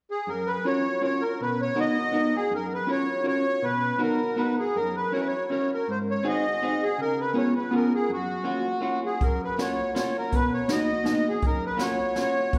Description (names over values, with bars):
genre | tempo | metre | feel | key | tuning
musette waltz | 162 BPM | 3/4 | straight | F# major | A4 = 436 Hz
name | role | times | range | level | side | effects
accordion | melody | 0.1-12.6 s | F#4 to D#5 | -29 LUFS | equal | light tremolo tuning
vintage hollow-body jazz guitar | accompaniment | 0.3-12.6 s | F#2 to A#4 | -29 LUFS | equal | none
jazz brush drum kit | drums | 9.2-12.6 s | hi-hat, kick drum, snare drum | -31 LUFS | equal | none
room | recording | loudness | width
wet recital hall reverb, RT60 1.7 s | heard from further back in the room | -26 LUFS | mono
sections
0.3-9.2 A section; 9.2-12.6 A section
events
none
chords
0.3 F#maj7; 1.4 Bmaj7; 2.5 F#maj7; 3.6 Bmaj7; 4.8 F#7; 5.9 G#7; 7.0 C#7; 8.1 F#maj7; 10.3 Bmaj7; 11.4 F#maj7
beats
| 0.29 0.67 1.04 | 1.41 1.78 2.15 | 2.52 2.89 3.26 | 3.63 4.01 4.38 | 4.76 5.14 5.51 | 5.88 6.25 6.62 | 6.99 7.36 7.72 | 8.09 8.46 8.83 | 9.21 9.59 9.96 | 10.33 10.70 11.07 | 11.44 11.81 12.18 | 12.55